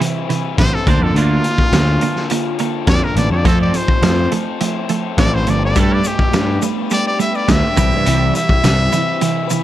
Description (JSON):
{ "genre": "indie rock", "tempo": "104 BPM", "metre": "4/4", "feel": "straight", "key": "C major", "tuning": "A4 = 440 Hz", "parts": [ { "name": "raw garage guitar", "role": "riff", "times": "0.0-9.6 s", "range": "C3 to B4", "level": "-24 LUFS", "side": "left 9 dB", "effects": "overdrive" }, { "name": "twelve-string electric guitar", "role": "riff", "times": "0.0-9.6 s", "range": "C3 to D4", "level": "-20 LUFS", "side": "right 7 dB", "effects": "analog chorus" }, { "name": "loose indie drum kit", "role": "drums", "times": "0.0-9.6 s", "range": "hi-hat, kick drum, snare drum", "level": "-18 LUFS", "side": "left 1 dB", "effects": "none" }, { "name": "brilliant trumpet", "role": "melody", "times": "0.6-9.5 s", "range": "F4 to E5", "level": "-21 LUFS", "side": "equal", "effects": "tape echo" }, { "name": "fuzz picked electric bass", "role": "bass", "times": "0.6-8.9 s", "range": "G1 to G2", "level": "-17 LUFS", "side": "left 1 dB", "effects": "overdrive" }, { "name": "string machine, violins", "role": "sustained chords", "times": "5.8-9.6 s", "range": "C3 to G4", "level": "-28 LUFS", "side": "left 1 dB", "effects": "ensemble chorus" }, { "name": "tube shaker", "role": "percussion", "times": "5.8-9.6 s", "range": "none", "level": "-31 LUFS", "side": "left 7 dB", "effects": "none" } ], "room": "light reverb", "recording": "dark, warm production", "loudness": "-13 LUFS", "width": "side -13 dB against mid", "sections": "0.0-9.6 A section", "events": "trumpet solo 0.0-9.6", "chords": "0.0 Cmaj7; 0.9 Bbmaj7/D; 3.5 Fmaj7; 5.8 Gadd9; 7.8 Cmaj7", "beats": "0.01 0.58 | 1.16 1.73 2.31 2.88 | 3.46 4.03 4.61 5.19 | 5.76 6.34 6.91 7.49 | 8.06 8.64 9.21" }